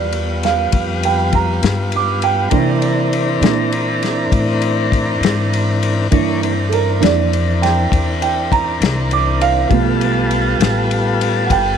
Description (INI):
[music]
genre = slow blues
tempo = 67 BPM (dotted quarters)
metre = 12/8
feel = straight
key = unclear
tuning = A4 = 439 Hz
[part]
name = dark upright piano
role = accompaniment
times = 0.0-11.8 s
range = E3 to D6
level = -18 LUFS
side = right 11 dB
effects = none
[part]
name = tonewheel organ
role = sustained chords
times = 0.0-11.8 s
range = E3 to C#5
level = -19 LUFS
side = left 1 dB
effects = slow rotary speaker
[part]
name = upright bass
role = bass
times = 0.0-11.8 s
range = G1 to C3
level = -19 LUFS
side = left 2 dB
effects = none
[part]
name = warm soul drum kit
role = drums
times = 0.1-11.6 s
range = kick drum, ride cymbal, snare drum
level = -21 LUFS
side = left 5 dB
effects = none
[sound]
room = light reverb, small room reverb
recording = 1960s-style stereo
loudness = -14 LUFS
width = side -8 dB against mid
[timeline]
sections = 0.0-11.8 A section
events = upright piano solo 0.0-11.8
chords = 0.0 G7; 2.5 C9; 9.7 G9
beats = 0.72 1.62 | 2.52 3.42 4.32 5.22 | 6.12 7.01 7.91 8.81 | 9.71 10.61 11.50